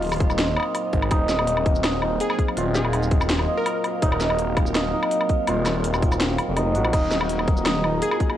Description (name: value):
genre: half-time drum and bass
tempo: 165 BPM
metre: 4/4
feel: half-time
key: Eb dorian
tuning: A4 = 440 Hz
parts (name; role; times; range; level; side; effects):
- deep dark ambient pad; sustained chords; 0.0-8.4 s; Gb3 to F5; -30 LUFS; left 1 dB; chorus, built-in reverb, sidechain pumping, cassette tape
- santur; arpeggios; 0.0-8.4 s; Eb4 to Eb5; -26 LUFS; right 2 dB; cassette tape, tape echo
- phased detuned saw bass; bass; 0.0-8.0 s; Eb1 to Bb1; -25 LUFS; equal; phaser
- drum and bass drum kit; drums; 0.0-8.4 s; crash cymbal, hi-hat, shaker, snare drum, woodblock; -26 LUFS; left 1 dB; cassette tape
- metallic inharmonic drone; texture; 0.0-8.4 s; C4 to F4; -33 LUFS; equal; chorus, built-in reverb, cassette tape
- electronic kick drum; drums; 0.2-8.3 s; none; -21 LUFS; equal; overdrive, cassette tape
- glassy wavetable pluck; melody; 2.2-3.9, 8.0-8.2 s; Ab4 to Bb4; -29 LUFS; left 1 dB; chorus, tape echo
room: light reverb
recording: home recording on cassette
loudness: -19 LUFS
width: side -11 dB against mid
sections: 0.0-8.4 A section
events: none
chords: 0.0 Ebmadd9